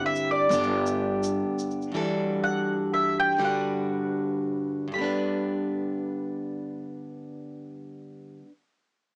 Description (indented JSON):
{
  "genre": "acoustic folk duo or small band",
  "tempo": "112-126 BPM",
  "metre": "3/4",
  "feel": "straight",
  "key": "G major",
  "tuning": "A4 = 440 Hz",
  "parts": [
    { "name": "mandolin", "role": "melody", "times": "0.0-8.0 s", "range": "D5 to B5", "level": "-26 LUFS", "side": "equal", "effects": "cassette tape" },
    { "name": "picked plugged-in steel-string acoustic guitar", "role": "accompaniment", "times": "0.0-8.5 s", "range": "G2 to B4", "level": "-27 LUFS", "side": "equal", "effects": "none" },
    { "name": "tube shaker", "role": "percussion", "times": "0.2-1.9 s", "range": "none", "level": "-40 LUFS", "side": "equal", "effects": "none" },
    { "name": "upright bass", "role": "bass", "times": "0.5-1.4 s", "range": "G1", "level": "-32 LUFS", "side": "equal", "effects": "transformer saturation" }
  ],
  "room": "light reverb",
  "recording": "home recording on cassette, small speaker sound",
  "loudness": "-24 LUFS",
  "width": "side -37 dB against mid",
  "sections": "0.0-1.9 A section; 1.9-4.9 B section; 4.9-8.2 C section",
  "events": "slowing down 1.9-4.9",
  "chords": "0.0 Cadd9/G; 0.5 G; 1.9 Dadd9/G; 3.4 Bm/G; 4.9 G"
}